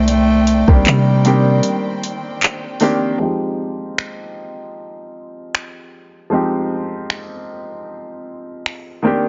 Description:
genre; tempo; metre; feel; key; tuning
contemporary R&B; 77 BPM; 4/4; swing 54% on 16ths; F minor; A4 = 440 Hz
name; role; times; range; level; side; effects
clear bass clarinet; melody; 0.0-2.2 s; G3 to A3; -19 LUFS; equal; none
clear baby grand piano; accompaniment; 0.0-9.3 s; Bb2 to A4; -23 LUFS; equal; low-pass filter
rich studio string section; sustained chords; 0.0-3.2 s; Eb3 to G5; -30 LUFS; equal; none
warm 808-style bass; bass; 0.0-1.6 s; C2 to C3; -18 LUFS; equal; none
smooth R&B drum kit; drums; 0.1-8.9 s; finger snaps, handclaps, hi-hat, kick drum; -18 LUFS; equal; none
room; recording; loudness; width
small room ambience; nothing above 7.5 kHz; -17 LUFS; mono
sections
0.0-3.2 A section; 3.2-9.3 B section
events
break 1.6-3.2; filter sweep on grand piano 3.2-9.3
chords
0.0 Cm9; 3.2 Fm9

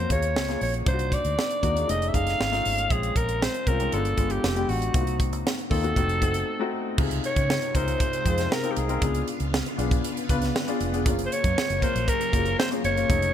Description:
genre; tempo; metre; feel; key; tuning
polished 1980s jazz-funk pop; 118 BPM; 4/4; straight; unclear; A4 = 438 Hz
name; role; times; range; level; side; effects
growling alto saxophone; melody; 0.0-13.3 s; Gb4 to F5; -27 LUFS; equal; ping-pong delay
warm baby grand piano; accompaniment; 0.0-13.3 s; C3 to Cb5; -29 LUFS; left 5 dB; wide subtle chorus
vintage muted fingered electric bass; bass; 0.0-13.3 s; F1 to Db3; -28 LUFS; right 1 dB; none
crisp fusion drum kit; drums; 0.1-13.3 s; crash cymbal, hi-hat, kick drum, snare drum; -27 LUFS; right 1 dB; none
phased string machine; sustained chords; 7.0-13.3 s; C3 to F4; -35 LUFS; right 1 dB; ensemble chorus, phaser
room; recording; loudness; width
light reverb, studio ambience; bright 1980s-style digital production; -22 LUFS; side -10 dB against mid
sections
0.0-7.0 A section; 7.0-13.3 B section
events
break 6.5-7.0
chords
0.0 Ebm7; 0.9 Cm7b5; 1.9 F7alt; 2.9 Bbm9; 3.9 G7b9; 4.9 Cm7b5; 6.0 F7b9; 7.0 Dbmaj7; 9.0 Db7b9; 11.1 Gbmaj7

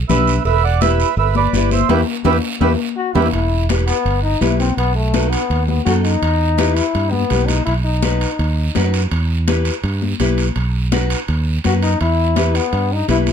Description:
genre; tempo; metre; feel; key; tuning
latin, cumbia; 166 BPM; 4/4; straight; E minor, E harmonic minor from 3.3 s; A4 = 439 Hz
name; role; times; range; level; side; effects
fingered electric bass; bass; 0.0-13.3 s; E1 to G2; -17 LUFS; right 1 dB; none
mellow accordion; melody; 0.1-3.3 s; G4 to F#5; -18 LUFS; right 12 dB; none
nylon-string guitar; accompaniment; 0.1-13.3 s; D4 to B4; -21 LUFS; left 3 dB; none
congas; percussion; 0.1-13.3 s; none; -22 LUFS; left 11 dB; none
guiro; percussion; 0.1-13.3 s; none; -30 LUFS; right 7 dB; none
cowbell and timbales; percussion; 0.5-13.3 s; none; -27 LUFS; right 6 dB; none
clear trombone; second line; 3.0-8.9, 11.7-13.3 s; A3 to F#4; -20 LUFS; left 5 dB; none
room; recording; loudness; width
little or no reverb; close, detailed microphones; -14 LUFS; side -8 dB against mid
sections
0.0-3.3 A section; 3.3-13.3 B section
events
band accent 1.9-3.3; drum fill 2.6-3.3; trombone solo 3.3-13.3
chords
0.5 Em; 4.8 B7; 6.2 Em; 7.7 B; 9.1 Em; 10.6 B; 12.0 Em

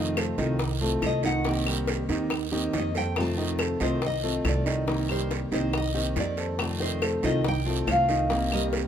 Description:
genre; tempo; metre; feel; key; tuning
latin, Cuban son and guajira; 140 BPM; 4/4; straight; unclear; A4 = 440 Hz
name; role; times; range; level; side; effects
fingerpicked steel-string acoustic guitar; accompaniment; 0.0-8.9 s; C3 to G4; -32 LUFS; left 2 dB; none
dark grand piano; arpeggios; 0.0-8.9 s; Eb3 to Eb5; -30 LUFS; right 3 dB; none
upright bass; bass; 0.0-8.9 s; C2 to F2; -30 LUFS; equal; none
bongos; percussion; 0.2-8.9 s; none; -35 LUFS; left 4 dB; none
claves; percussion; 0.2-8.7 s; none; -35 LUFS; left 3 dB; none
guiro; percussion; 0.2-8.9 s; none; -36 LUFS; right 7 dB; none
nylon-string guitar; melody; 1.1-8.7 s; C5 to A5; -30 LUFS; left 1 dB; none
room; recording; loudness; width
moderate plate reverb, RT60 3.1 s; minimal, uncompressed stereo recording; -24 LUFS; side -9 dB against mid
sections
0.0-8.9 A section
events
nylon-string guitar solo 0.0-8.9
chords
0.0 F7; 1.4 Cm7; 3.2 F7; 4.9 Cm7; 6.6 F7; 8.3 Cm7

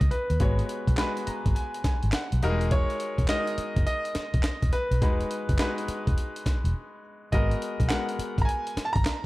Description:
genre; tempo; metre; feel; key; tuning
R&B, new jack swing; 104 BPM; 4/4; swing 64% on 16ths; G# minor; A4 = 441 Hz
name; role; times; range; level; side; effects
clear concert grand piano; melody; 0.0-9.3 s; B4 to A#5; -32 LUFS; right 1 dB; none
bright concert grand piano; accompaniment; 0.0-9.3 s; G3 to A#5; -32 LUFS; left 2 dB; none
vintage muted fingered electric bass; bass; 0.0-9.1 s; E1 to D#2; -26 LUFS; equal; none
breakbeat sampler-style drum kit; drums; 0.0-9.2 s; handclaps, hi-hat, kick drum, snare drum; -27 LUFS; equal; none
room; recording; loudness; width
little or no reverb; none; -24 LUFS; side -19 dB against mid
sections
0.0-9.3 A section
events
grand piano fill 1.0-2.7; break 6.7-7.3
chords
0.0 G#m9; 2.4 Emaj9#11; 7.3 G#m9

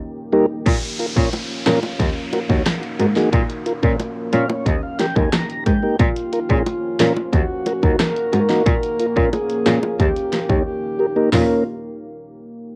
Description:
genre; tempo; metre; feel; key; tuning
dancehall; 90 BPM; 4/4; straight; unclear; A4 = 439 Hz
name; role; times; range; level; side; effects
deep dark ambient pad; sustained chords; 0.0-11.6 s; Bb3; -32 LUFS; equal; chorus, built-in reverb, sidechain pumping, plate reverb
mellow tonewheel organ; accompaniment; 0.3-11.6 s; G3 to Bb5; -22 LUFS; equal; slow rotary speaker, sidechain pumping, plate reverb
rich cello; bass; 0.7-11.4 s; Eb2 to Bb2; -23 LUFS; equal; none
pop drum kit; drums; 0.7-11.5 s; crash cymbal, hi-hat, kick drum, rim click, snare drum, toms; -22 LUFS; equal; cassette tape
downlifter; sound effects; 0.7-6.0 s; none; -35 LUFS; equal; none
bongos; percussion; 1.3-11.6 s; none; -29 LUFS; equal; none
breathy flute-like synth lead; second line; 6.0-11.6 s; F4 to Bb4; -26 LUFS; equal; chorus, analog delay, plate reverb
room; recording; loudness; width
light reverb; home recording on cassette; -19 LUFS; mono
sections
0.7-11.3 A section; 11.3-12.8 B section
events
break 0.0-0.7; tonewheel organ fill 4.0-6.0; drums muted 10.7-11.3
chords
0.0 Eb; 0.7 Bbm; 2.0 Ebm; 3.3 Bbm; 4.7 Eb; 6.0 Bbm; 7.3 Ebm; 8.7 Bbm; 10.0 Eb; 11.3 Bbm

